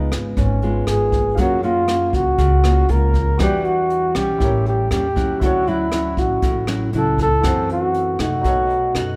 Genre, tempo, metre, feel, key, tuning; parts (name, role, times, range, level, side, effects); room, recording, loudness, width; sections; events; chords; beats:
bossa nova; 119 BPM; 4/4; straight; A4 = 440 Hz
breathy flugelhorn; melody; 0.0-9.2 s; C#4 to A#4; -22 LUFS; equal
nylon-string guitar; accompaniment; 0.0-9.2 s; F#2 to F#4; -26 LUFS; equal
warm baby grand piano; accompaniment; 0.0-9.2 s; D#4 to E#5; -32 LUFS; equal
upright bass; bass; 0.0-9.2 s; G#1 to C3; -24 LUFS; equal
jazz brush drum kit; drums; 0.1-9.1 s; hi-hat, kick drum, rim click; -26 LUFS; equal
moderate large studio reverb, RT60 1.2 s; band playing live in one room; -18 LUFS; mono
0.0-9.2 A section
0.0 C#7; 1.4 F#maj7; 3.4 Em9; 4.4 A7b9; 5.4 Dmaj9; 7.4 F#m7b5; 8.4 B7
0.37 0.88 | 1.38 1.88 2.39 2.89 | 3.40 3.90 4.41 4.91 | 5.42 5.92 6.43 6.93 | 7.44 7.94 8.45 8.95